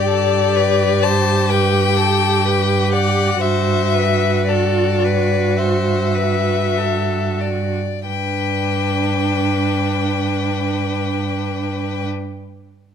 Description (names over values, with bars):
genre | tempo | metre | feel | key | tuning
classical, slow romantic movement for string quartet | 44-66 BPM | 4/4 | rubato | G major | A4 = 440 Hz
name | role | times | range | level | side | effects
rich violin | melody | 0.0-12.1 s | D5 to A5 | -21 LUFS | left 12 dB | none
rich violin | second line | 0.0-12.1 s | A4 to D5 | -24 LUFS | left 5 dB | none
rich viola | accompaniment | 0.0-12.1 s | D4 to G4 | -22 LUFS | right 3 dB | none
rich cello | bass | 0.0-12.1 s | G2 | -20 LUFS | right 4 dB | none
room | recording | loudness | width
light reverb | close, detailed microphones | -15 LUFS | side -8 dB against mid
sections
0.0-8.1 A section; 8.1-12.9 B section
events
slowing down 0.0-8.1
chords
0.0 G5; 3.4 D/G; 8.1 G